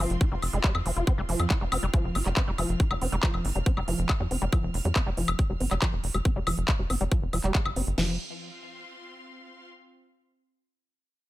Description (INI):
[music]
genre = psychedelic trance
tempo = 139 BPM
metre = 4/4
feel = straight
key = unclear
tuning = A4 = 439 Hz
[part]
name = overdriven acid bass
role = riff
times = 0.0-8.2 s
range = F3 to F4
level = -32 LUFS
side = equal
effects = auto-pan, cassette tape, sidechain pumping, digital delay
[part]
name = tight sequencer bass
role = bass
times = 0.0-8.2 s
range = F1 to F2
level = -29 LUFS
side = equal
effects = none
[part]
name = rich symphonic string section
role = texture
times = 0.0-9.7 s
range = C4 to F6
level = -44 LUFS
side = right 1 dB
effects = sidechain pumping
[part]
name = big-room dance drum kit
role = drums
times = 0.1-8.0 s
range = handclaps, hi-hat, woodblock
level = -31 LUFS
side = left 1 dB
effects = none
[part]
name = big-room dance drum kit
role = drums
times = 0.2-8.1 s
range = crash cymbal, kick drum, snare drum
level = -27 LUFS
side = equal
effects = none
[sound]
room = little or no reverb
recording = none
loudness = -24 LUFS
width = side -17 dB against mid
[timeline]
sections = 0.0-8.0 A section; 8.0-9.7 B section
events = fade-out on string section 0.0-8.0; filter sweep on analog synth bass 0.0-8.0; filter sweep on acid bass 0.0-8.0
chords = 0.0 F5